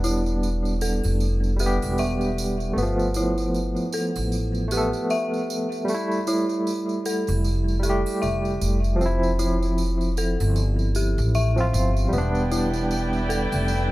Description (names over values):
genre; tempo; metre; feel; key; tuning
trip hop; 77 BPM; 4/4; swing 58% on 16ths; unclear; A4 = 440 Hz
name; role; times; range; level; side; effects
barky tine electric piano; accompaniment; 0.0-13.9 s; F3 to A4; -25 LUFS; equal; tremolo, tape echo
dark detuned synth bell; arpeggios; 0.0-13.9 s; E4 to E5; -29 LUFS; equal; chorus, tape echo
upright bass; bass; 0.0-13.9 s; E1 to A1; -24 LUFS; equal; none
tambourine and triangle; percussion; 0.0-13.9 s; none; -36 LUFS; right 5 dB; none
muted studio violin section; sustained chords; 12.1-13.9 s; E4 to G5; -29 LUFS; equal; none
room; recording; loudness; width
studio ambience; vinyl crackle; -21 LUFS; side -17 dB against mid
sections
0.0-13.9 A section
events
none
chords
0.0 Em7; 2.8 G9; 5.9 Fmaj7; 9.0 Fmaj9; 12.1 Em7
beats
0.43 1.21 1.99 | 2.77 3.55 4.33 5.11 | 5.89 6.67 7.45 8.22 | 9.00 9.78 10.56 11.34 | 12.12 12.90 13.68